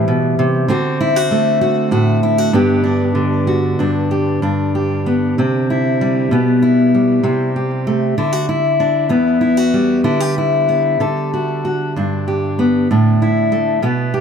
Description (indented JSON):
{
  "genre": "folk, solo fingerstyle acoustic guitar",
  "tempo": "64 BPM (dotted quarters)",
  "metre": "6/8",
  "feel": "rubato",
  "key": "G major",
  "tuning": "A4 = 440 Hz",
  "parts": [
    { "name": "fingerpicked steel-string acoustic guitar", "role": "solo", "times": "0.0-14.2 s", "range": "E2 to A4", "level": "-13 LUFS", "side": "equal", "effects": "tape echo" }
  ],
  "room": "light reverb",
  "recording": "close, detailed microphones",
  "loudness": "-13 LUFS",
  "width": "side -7 dB against mid",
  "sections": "0.0-4.4 A section; 4.4-14.2 B section",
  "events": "none",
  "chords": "0.0 C; 0.7 D7; 2.5 G; 5.4 C; 6.3 G/B; 7.2 C6; 8.2 D; 9.1 Emadd9; 10.1 G/D; 11.0 D; 12.0 G; 12.9 Dsus2/A"
}